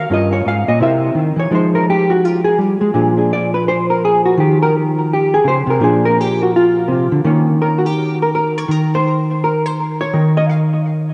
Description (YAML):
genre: solo jazz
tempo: 167 BPM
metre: 4/4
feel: swing 63% on 8ths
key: Eb mixolydian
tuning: A4 = 440 Hz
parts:
  - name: hollow-body jazz guitar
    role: solo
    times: 0.0-11.1 s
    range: G2 to F5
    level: -15 LUFS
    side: equal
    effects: analog chorus, tape echo
room: wet plate reverb, RT60 2.8 s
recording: dreamy mix soaked in reverb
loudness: -15 LUFS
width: mono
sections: 0.0-7.2 A section; 7.2-11.1 B section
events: hollow-body jazz guitar solo 0.0-7.2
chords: 0.1 Gm7b5; 0.8 C7b9; 1.5 Fm7; 2.9 Bb7; 4.4 Ebsus2; 5.8 Bbadd9; 7.2 Eb7sus2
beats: | 0.08 0.44 0.80 1.15 | 1.51 1.87 2.23 2.58 | 2.94 3.30 3.65 4.01 | 4.37 4.73 5.09 5.45 | 5.80 6.16 6.52 6.88 | 7.24 7.60 7.96 8.32 | 8.68 9.04 9.40 9.76 | 10.12 10.48 10.84